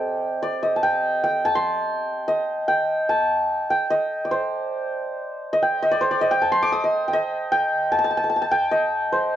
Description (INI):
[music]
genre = indian classical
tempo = 148 BPM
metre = 3/4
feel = straight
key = C raga shivaranjani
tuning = A4 = 439 Hz
[part]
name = santur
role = solo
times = 0.0-9.4 s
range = C4 to Eb6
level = -20 LUFS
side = equal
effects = none
[sound]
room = light reverb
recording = worn, warbling old tape, cassette tape, warbly pitch drift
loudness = -20 LUFS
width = side -11 dB against mid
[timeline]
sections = 0.0-4.3 A section; 4.3-9.4 B section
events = speeding up 0.0-9.4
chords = none